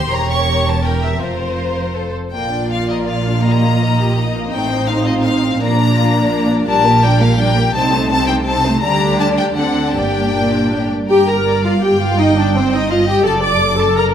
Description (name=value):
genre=quick classical-period movement for string orchestra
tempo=154-172 BPM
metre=3/4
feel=rubato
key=Bb major, G minor from 6.7 s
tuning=A4 = 440 Hz
part: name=rich chamber violin section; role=melody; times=0.0-14.1 s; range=A4 to C#6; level=-20 LUFS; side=left 4 dB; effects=none
part: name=clear chamber violin section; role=second line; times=0.0-14.0 s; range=G3 to D6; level=-22 LUFS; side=left 2 dB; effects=none
part: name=dark studio viola section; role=accompaniment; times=0.0-14.1 s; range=G3 to D5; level=-17 LUFS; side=right 1 dB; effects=none
part: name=warm chamber double bass section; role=bass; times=0.0-14.1 s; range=E1 to D2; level=-20 LUFS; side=right 3 dB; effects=none
part: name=warm symphonic cello section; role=bass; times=0.0-14.1 s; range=E2 to D3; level=-21 LUFS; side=right 2 dB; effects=none
room=moderate scoring stage reverb, RT60 1.6 s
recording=none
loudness=-13 LUFS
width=side -9 dB against mid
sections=0.0-2.3 A section; 2.3-11.1 B section; 11.1-14.1 A section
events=none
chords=0.1 Edim7; 1.2 Fsus4; 2.3 Bb; 3.5 Eb/Bb; 4.5 F7/A; 5.6 Bb; 6.7 Gm/Bb; 7.8 Adim/C; 8.8 Gm/D; 9.6 D7; 9.9 Gm; 13.3 D/F#